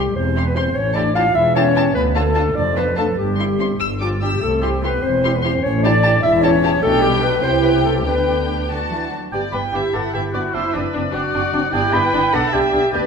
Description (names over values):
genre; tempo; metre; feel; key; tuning
quick classical-period movement for symphony orchestra; 99 BPM (dotted quarters); 6/8; rubato; G major from 6.8 s; A4 = 445 Hz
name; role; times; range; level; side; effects
muted chamber violin section; melody; 0.0-13.0 s; B3 to E6; -27 LUFS; left 4 dB; none
hollow small flute group; second line; 0.0-13.0 s; F4 to G6; -24 LUFS; right 1 dB; none
mellow clarinet; second line; 0.0-13.0 s; B3 to F5; -22 LUFS; left 2 dB; none
muted chamber violin section; second line; 0.0-13.1 s; E4 to G5; -28 LUFS; equal; none
dark French horn section; sustained chords; 0.0-12.8 s; F3 to F4; -24 LUFS; left 4 dB; none
muted chamber cello section; bass; 0.0-13.1 s; D2 to B4; -25 LUFS; right 1 dB; none
muted chamber double bass section; bass; 0.0-13.0 s; E1 to D2; -24 LUFS; right 2 dB; none
muted chamber viola section; accompaniment; 0.4-13.1 s; C4 to B4; -24 LUFS; right 3 dB; none
warm oboe; second line; 9.3-13.1 s; D5 to B5; -21 LUFS; right 1 dB; none
room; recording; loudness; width
wet scoring stage reverb, RT60 1.7 s; minimal, uncompressed stereo recording; -15 LUFS; side -6 dB against mid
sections
0.0-9.3 A section; 9.3-13.1 B section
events
none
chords
0.2 C/E; 0.8 A7; 1.9 Dm; 2.6 Dm/F; 3.2 C/G; 3.8 G5; 4.4 C; 5.0 C/E; 5.6 A7; 6.8 G/B; 7.4 C; 8.1 G/D; 8.7 D; 9.3 G; 10.5 D7/F#; 11.7 G; 12.3 G/B